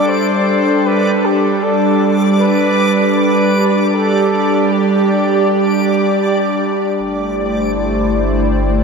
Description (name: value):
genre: ambient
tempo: free time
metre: none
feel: none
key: G major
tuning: A4 = 440 Hz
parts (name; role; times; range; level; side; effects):
- mellow flugelhorn; melody; 0.0-6.2 s; G4 to D5; -18 LUFS; right 1 dB; ping-pong delay
- airy breathy pad; sustained chords; 0.0-8.8 s; G3 to D5; -14 LUFS; right 1 dB; chorus
- analog drone; drone; 0.0-8.8 s; G3 to G4; -24 LUFS; equal; chorus
- backwards swelling texture; texture; 0.0-7.0 s; D5 to D6; -22 LUFS; left 1 dB; built-in reverb
- warm sub bass; bass; 7.0-8.8 s; G1; -21 LUFS; equal; none
room: wet huge ambient reverb, RT60 7.4 s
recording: none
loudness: -12 LUFS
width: side -5 dB against mid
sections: 0.0-7.0 A section; 7.0-8.8 B section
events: none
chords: 0.0 G; 7.0 Am7/G